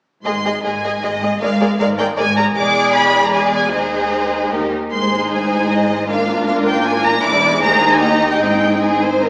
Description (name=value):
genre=quick classical-period movement for string orchestra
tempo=155 BPM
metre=3/4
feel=rubato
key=Ab major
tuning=A4 = 436 Hz
part: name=rich symphonic cello section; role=bass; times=0.2-9.3 s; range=Eb2 to Ab2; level=-26 LUFS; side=equal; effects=none
part: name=rich symphonic violin section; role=melody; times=0.3-9.2 s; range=Eb5 to D6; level=-20 LUFS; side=equal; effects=none
part: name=warm symphonic violin section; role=second line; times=0.3-9.3 s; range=E4 to Eb5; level=-21 LUFS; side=equal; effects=none
part: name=rich symphonic viola section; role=accompaniment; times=0.3-9.3 s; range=Ab3 to Ab4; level=-23 LUFS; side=equal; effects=none
part: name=rich symphonic double bass section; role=bass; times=0.3-9.3 s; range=E1 to Eb2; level=-33 LUFS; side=equal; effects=none
room=wet recital hall reverb, RT60 1.5 s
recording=recorded in a church or concert hall, small speaker sound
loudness=-16 LUFS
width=mono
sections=0.3-9.3 A section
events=none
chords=0.3 Ab; 2.6 E7; 3.7 Ab/Eb; 4.5 Eb; 4.9 Ab; 6.1 Bb7/Ab; 7.2 E7; 7.6 Ab/Eb; 8.0 Eb; 8.4 Ab